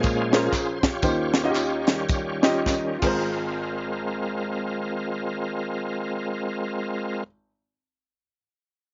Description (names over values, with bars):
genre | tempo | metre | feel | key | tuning
uptempo gospel | 96-125 BPM | 4/4 | swing 60% on 8ths | Ab major | A4 = 441 Hz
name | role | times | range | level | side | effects
clear concert grand piano | accompaniment | 0.0-7.3 s | Ab1 to Eb5 | -30 LUFS | equal | none
bright tonewheel organ | sustained chords | 0.0-7.2 s | Bb2 to Db5 | -29 LUFS | equal | slow rotary speaker, overdrive, chorus vibrato
tight funk drum kit | drums | 0.0-3.1 s | crash cymbal, hi-hat, kick drum, snare drum | -26 LUFS | equal | none
tambourine and handclaps | percussion | 0.0-3.6 s | none | -37 LUFS | equal | none
room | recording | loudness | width
little or no reverb | recorded outdoors, with no room sound, nothing above 7.5 kHz | -26 LUFS | mono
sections
0.0-3.3 A section; 3.3-8.3 B section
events
slowing down 0.0-3.3; tonewheel organ solo 0.0-3.3; drum fill 2.7-3.3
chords
0.0 Bbm9; 1.0 Eb13; 3.0 Ab69